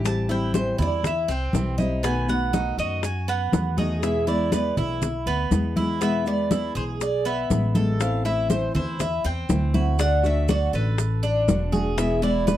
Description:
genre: latin, Cuban son and guajira.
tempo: 121 BPM.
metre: 4/4.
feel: straight.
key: A minor.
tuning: A4 = 440 Hz.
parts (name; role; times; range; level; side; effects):
nylon-string guitar; accompaniment; 0.0-12.6 s; B2 to F#4; -27 LUFS; left 2 dB; none.
Cuban tres; arpeggios; 0.0-12.6 s; B3 to C5; -29 LUFS; right 2 dB; none.
upright bass; bass; 0.0-12.6 s; E1 to F#2; -26 LUFS; equal; none.
congas; percussion; 0.0-12.6 s; none; -26 LUFS; equal; none.
Cuban tres; melody; 0.1-12.6 s; B4 to A5; -28 LUFS; right 1 dB; none.
bongos; percussion; 0.1-12.6 s; none; -29 LUFS; left 8 dB; none.
maracas; percussion; 0.1-12.6 s; none; -39 LUFS; right 22 dB; none.
room: light reverb.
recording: dry, close 1970s-style studio recording.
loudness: -21 LUFS.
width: side -12 dB against mid.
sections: 0.0-12.6 A section.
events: none.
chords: 0.0 Am7; 2.0 B7; 4.0 E; 8.0 Am; 10.0 D; 12.0 E.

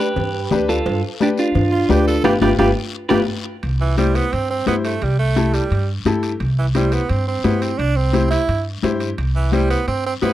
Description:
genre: latin, cumbia.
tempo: 173 BPM.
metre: 4/4.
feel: straight.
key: C major.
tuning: A4 = 440 Hz.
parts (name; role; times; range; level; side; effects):
clean electric guitar; melody; 0.0-3.2 s; D4 to B4; -20 LUFS; right 2 dB; spring reverb.
bright upright piano; accompaniment; 0.0-10.3 s; D4 to C5; -21 LUFS; left 3 dB; none.
upright bass; bass; 0.2-10.3 s; G1 to G2; -20 LUFS; equal; none.
congas; percussion; 0.2-10.3 s; none; -24 LUFS; left 7 dB; none.
cowbell and timbales; percussion; 0.2-10.3 s; none; -29 LUFS; right 4 dB; none.
guiro; percussion; 0.2-10.3 s; none; -36 LUFS; left 8 dB; none.
edgy tenor saxophone; second line; 1.7-10.3 s; E3 to A4; -22 LUFS; right 5 dB; none.
room: little or no reverb.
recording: dry, close 1970s-style studio recording.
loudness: -16 LUFS.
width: side -13 dB against mid.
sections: 0.0-3.6 A section; 3.6-10.3 B section.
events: band accent 2.2-3.6; tenor saxophone solo 3.6-10.3.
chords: 0.0 G7; 3.6 C.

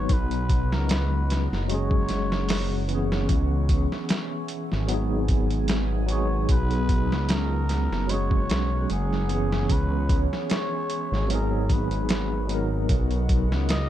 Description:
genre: trip hop.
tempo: 75 BPM.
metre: 4/4.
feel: swing 54% on 16ths.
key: C# dorian.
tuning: A4 = 440 Hz.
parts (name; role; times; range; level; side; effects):
trumpet with cup mute; melody; 0.0-13.9 s; G#4 to D#5; -34 LUFS; equal; tape echo.
tine electric piano; accompaniment; 0.0-13.9 s; E3 to B4; -29 LUFS; equal; medium stereo tremolo.
deep dark ambient pad; sustained chords; 0.0-13.9 s; B3 to D#6; -36 LUFS; right 1 dB; chorus, built-in reverb, vintage 12-bit sampler grit.
dark detuned saw bass; bass; 0.0-13.9 s; F#1 to C#2; -25 LUFS; equal; none.
trip hop sampler-style drum kit; drums; 0.1-13.9 s; hi-hat, kick drum, snare drum; -26 LUFS; equal; none.
room: little or no reverb.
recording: dark, warm production.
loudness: -22 LUFS.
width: side -12 dB against mid.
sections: 0.0-13.9 A section.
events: none.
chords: 0.1 Bmaj7; 1.7 F#sus2; 3.3 C#m7; 4.9 G#m7; 6.5 Bmaj7; 8.1 F#sus2; 9.7 C#m7; 11.3 G#m7; 12.9 Bmaj7.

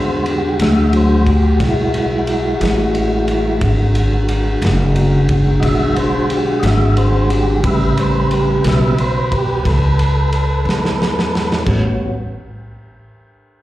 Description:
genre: slow blues.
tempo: 60 BPM (dotted quarters).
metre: 12/8.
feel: straight.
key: unclear.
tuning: A4 = 439 Hz.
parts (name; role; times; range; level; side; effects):
mellow tonewheel organ; sustained chords; 0.0-12.1 s; C#3 to E5; -17 LUFS; equal; slow rotary speaker, chorus vibrato.
upright bass; bass; 0.0-12.0 s; F#1 to E2; -16 LUFS; equal; none.
crunchy breakbeat drum kit; drums; 0.3-11.8 s; crash cymbal, kick drum, ride cymbal, snare drum; -22 LUFS; equal; none.
room: little or no reverb.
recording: live gig heard through the venue's PA, recital hall reverb.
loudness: -13 LUFS.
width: side -15 dB against mid.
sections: 0.0-11.7 A section; 11.7-13.6 B section.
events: tonewheel organ solo 0.0-11.7; drum fill 10.7-11.7.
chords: 0.0 E9; 7.6 A9; 11.7 A13.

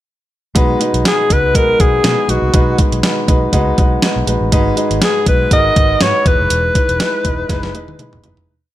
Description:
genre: 1980s-style pop.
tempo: 121 BPM.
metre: 4/4.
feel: swing 55% on 16ths.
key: B major.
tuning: A4 = 439 Hz.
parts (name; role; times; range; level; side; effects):
warm baby grand piano; accompaniment; 0.5-8.5 s; G#2 to B4; -18 LUFS; equal; none.
vintage muted fingered electric bass; bass; 0.6-8.5 s; E1 to B2; -19 LUFS; equal; none.
clean 12-bit digital drum machine; drums; 0.6-8.5 s; hi-hat, kick drum, snare drum, toms; -15 LUFS; equal; none.
clear alto saxophone; melody; 1.1-8.0 s; F#4 to D#5; -15 LUFS; left 1 dB; ping-pong delay.
room: light reverb.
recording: none.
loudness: -11 LUFS.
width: side -14 dB against mid.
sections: 0.6-8.5 verse.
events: fade-out 6.5-8.5; drum fill 7.5-8.5.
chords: 0.6 B6; 4.5 G#m7; 6.3 Emaj7.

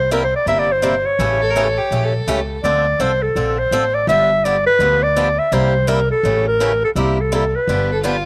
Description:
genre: acoustic string swing (jazz manouche).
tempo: 166 BPM.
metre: 4/4.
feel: swing 61% on 8ths.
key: C mixolydian.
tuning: A4 = 440 Hz.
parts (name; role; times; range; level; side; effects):
warm clarinet; melody; 0.0-8.1 s; G4 to E5; -19 LUFS; equal; none.
upright bass; bass; 0.0-8.3 s; G1 to D2; -24 LUFS; equal; none.
picked swing-style acoustic guitar; accompaniment; 0.1-8.2 s; C3 to A4; -25 LUFS; equal; slapback echo.
rich violin; second line; 1.4-2.6, 7.9-8.3 s; F4 to Bb4; -25 LUFS; equal; slapback echo.
room: little or no reverb.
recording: recorded outdoors, with no room sound.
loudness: -17 LUFS.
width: mono.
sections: 0.0-8.3 A section.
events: none.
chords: 0.0 C7; 1.2 A7b9; 2.6 Dm7; 4.1 G7; 5.5 C7; 6.2 A7b9; 7.0 C7; 7.7 G7.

